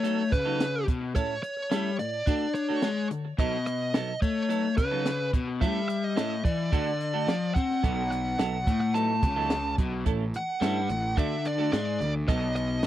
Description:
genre	indie rock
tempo	108 BPM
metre	4/4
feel	straight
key	unclear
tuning	A4 = 445 Hz
part	fuzz lead guitar	melody	0.0-12.9 s	B4 to A5	-31 LUFS	right 2 dB	distortion, tape echo
part	crunchy overdriven guitar	riff	0.0-12.9 s	A2 to D4	-30 LUFS	left 5 dB	none
part	overdriven electric guitar	riff	0.0-12.9 s	F#3 to A4	-34 LUFS	right 10 dB	lush chorus
part	compact cocktail drum kit	drums	0.0-12.9 s	hi-hat, kick drum, snare drum	-27 LUFS	right 1 dB	none
part	fuzz picked electric bass	bass	7.8-12.9 s	A1 to D3	-31 LUFS	right 1 dB	overdrive
room	little or no reverb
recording	dry, close 1970s-style studio recording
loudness	-25 LUFS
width	side -12 dB against mid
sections	0.0-12.9 A section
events	none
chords	0.0 B7; 1.2 A; 2.3 Dmaj7; 3.4 B7; 5.6 A; 6.7 D; 7.8 B7; 10.1 A; 11.2 D; 12.3 B7

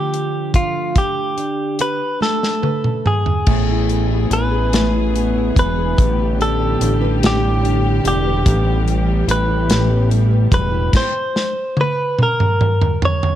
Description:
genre	six-eight pop ballad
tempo	48 BPM (dotted quarters)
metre	6/8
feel	straight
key	unclear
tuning	A4 = 441 Hz
part	direct-recorded clean electric guitar	melody	0.0-13.4 s	F4 to C#5	-21 LUFS	equal	none
part	nylon-string guitar	accompaniment	0.0-11.0 s	A2 to B4	-22 LUFS	equal	double-tracked left and right
part	modern studio drum kit	drums	0.1-13.4 s	crash cymbal, hi-hat, kick drum, snare drum, toms	-18 LUFS	equal	none
part	warm studio string section	sustained chords	3.5-10.9 s	D3 to G#4	-25 LUFS	left 1 dB	none
part	fat analog bass	bass	3.5-10.9 s	E1 to A1	-18 LUFS	equal	none
room	little or no reverb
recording	dark, warm production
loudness	-15 LUFS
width	side -11 dB against mid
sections	0.0-3.5 A section; 3.5-13.4 B section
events	drum fill 2.2-3.5, 10.9-13.4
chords	0.0 Dm; 1.0 Gadd9; 3.5 E/A; 6.0 G/A; 8.5 Em/A; 10.9 N.C.

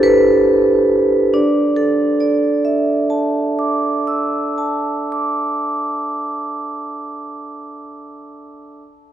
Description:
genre	classical, contemporary piece for solo vibraphone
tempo	46 BPM (dotted quarters)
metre	6/8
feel	rubato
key	unclear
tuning	A4 = 439 Hz
part	vibraphone with medium mallets	solo	0.0-8.8 s	D4 to E6	-15 LUFS	right 1 dB	none
room	wet cathedral reverb, RT60 5.0 s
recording	dark, warm production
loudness	-15 LUFS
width	side -10 dB against mid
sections	0.0-1.3 A section; 1.3-6.6 B section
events	slowing down 0.0-1.3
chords	0.0 Cadd9/D; 1.3 Dsus2

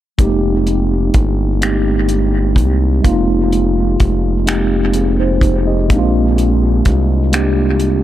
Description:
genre	slow six-eight R&B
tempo	42 BPM (dotted quarters)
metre	6/8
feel	straight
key	F dorian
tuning	A4 = 440 Hz
part	mellow tine electric piano	accompaniment	0.2-8.0 s	Ab3 to Eb5	-16 LUFS	equal	medium stereo tremolo, dub echo
part	smooth synth bass	bass	0.2-8.0 s	F1 to C2	-15 LUFS	equal	none
part	cloth-damped thuddy drum kit	drums	0.2-8.0 s	finger snaps, hi-hat, kick drum	-17 LUFS	equal	dub echo
room	little or no reverb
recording	echo-heavy mix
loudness	-12 LUFS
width	side -13 dB against mid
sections	0.2-8.0 A section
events	none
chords	0.2 Fm11; 5.9 Bb9

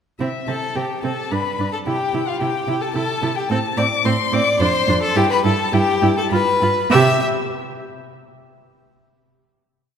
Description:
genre	quick classical-period movement for string quartet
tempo	100-111 BPM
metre	3/4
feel	rubato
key	C major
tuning	A4 = 440 Hz
part	rich violin	melody	0.2-7.2 s	E5 to E6	-22 LUFS	left 6 dB	none
part	clear violin	second line	0.2-7.2 s	E4 to E5	-23 LUFS	left 2 dB	none
part	rich viola	accompaniment	0.2-7.2 s	C4 to G4	-24 LUFS	right 2 dB	none
part	rich cello	bass	0.2-7.2 s	F2 to C3	-22 LUFS	right 4 dB	none
room	wet concert hall reverb, RT60 2.5 s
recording	none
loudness	-16 LUFS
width	side -8 dB against mid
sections	0.2-6.9 A section; 6.9-8.6 final chord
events	none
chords	0.2 C6; 1.3 G; 1.9 C; 3.5 Am; 4.6 Dm7; 5.2 Gsus2; 6.3 G7; 6.9 C5

